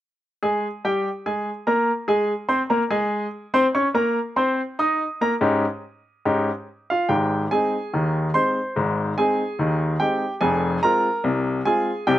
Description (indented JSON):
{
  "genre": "ragtime piano",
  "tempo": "72 BPM",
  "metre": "2/4",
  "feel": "straight",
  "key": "Ab major",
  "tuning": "A4 = 440 Hz",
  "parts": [
    { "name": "clear baby grand piano", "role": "solo", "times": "0.4-12.2 s", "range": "F1 to Eb6", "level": "-20 LUFS", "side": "equal", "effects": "none" }
  ],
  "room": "little or no reverb",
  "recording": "recorded outdoors, with no room sound",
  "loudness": "-20 LUFS",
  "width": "side -13 dB against mid",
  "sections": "0.4-7.1 A section; 7.1-12.2 B section",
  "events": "none",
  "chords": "0.4 Ab; 3.8 Eb7; 7.1 Ab; 10.4 Fm"
}